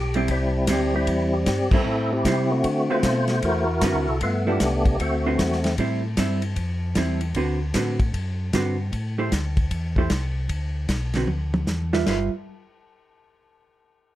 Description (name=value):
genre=soul jazz organ trio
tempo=153 BPM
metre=4/4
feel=swing 64% on 8ths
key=G major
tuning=A4 = 439 Hz
part: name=percussive tonewheel organ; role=melody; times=0.0-5.8 s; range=G3 to C5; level=-23 LUFS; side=equal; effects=slow rotary speaker, chorus vibrato
part: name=mellow tonewheel organ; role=bass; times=0.0-12.3 s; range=G1 to D3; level=-26 LUFS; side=equal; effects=slow rotary speaker
part: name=warm soul drum kit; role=drums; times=0.1-12.2 s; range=china cymbal, crash cymbal, hi-hat, kick drum, ride cymbal, snare drum, toms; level=-26 LUFS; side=equal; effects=none
part: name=vintage hollow-body jazz guitar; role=accompaniment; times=0.2-12.3 s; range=D3 to E5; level=-26 LUFS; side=right 3 dB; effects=none
room=light reverb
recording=none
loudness=-21 LUFS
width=side -14 dB against mid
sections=0.0-5.8 A section; 5.8-12.1 B section; 12.1-13.6 C section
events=band accent 1.7; drum fill 11.3-12.1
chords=0.0 Am7; 2.6 D13; 4.2 G13; 5.0 D13; 5.8 Am7; 7.4 D6; 8.9 Am7; 10.5 Dsus2; 12.1 G6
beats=0.30 0.69 | 1.08 1.47 1.86 2.26 | 2.65 3.04 3.43 3.82 | 4.22 4.61 5.00 5.39 | 5.79 6.18 6.57 6.96 | 7.36 7.75 8.14 8.53 | 8.93 9.32 9.71 10.10 | 10.50 10.89 11.28 11.67 | 12.07